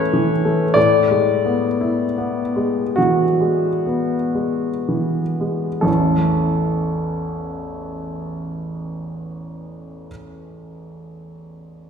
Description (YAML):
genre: classical, romantic nocturne for solo piano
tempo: 18-33 BPM (dotted quarters)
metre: 6/8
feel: rubato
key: A major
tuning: A4 = 435 Hz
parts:
  - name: clear grand piano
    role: solo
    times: 0.0-11.9 s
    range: A1 to D5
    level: -18 LUFS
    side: left 1 dB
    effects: none
room: wet scoring stage reverb, RT60 1.7 s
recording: recorded in a church or concert hall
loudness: -17 LUFS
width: side -7 dB against mid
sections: 0.0-5.9 A section; 5.9-10.8 B section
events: slowing down 0.0-5.9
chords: 0.0 A; 0.8 E7/A; 5.9 A